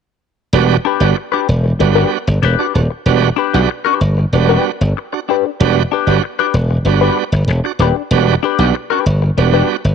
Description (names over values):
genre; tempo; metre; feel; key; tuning
funk; 95 BPM; 4/4; straight; E minor; A4 = 440 Hz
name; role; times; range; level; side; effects
bright tonewheel organ; stabs; 0.5-9.8 s; G3 to F#4; -18 LUFS; right 15 dB; overdrive, fast rotary speaker
glassy slap bass; bass; 0.5-9.9 s; D#1 to B1; -13 LUFS; equal; none
clean electric guitar; accompaniment; 0.8-9.9 s; D4 to B4; -18 LUFS; left 14 dB; wah, tube saturation
room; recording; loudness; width
digital ambience; 1960s-style stereo with parts hard left and right; -12 LUFS; side -7 dB against mid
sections
0.5-9.9 A section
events
none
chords
0.5 Em7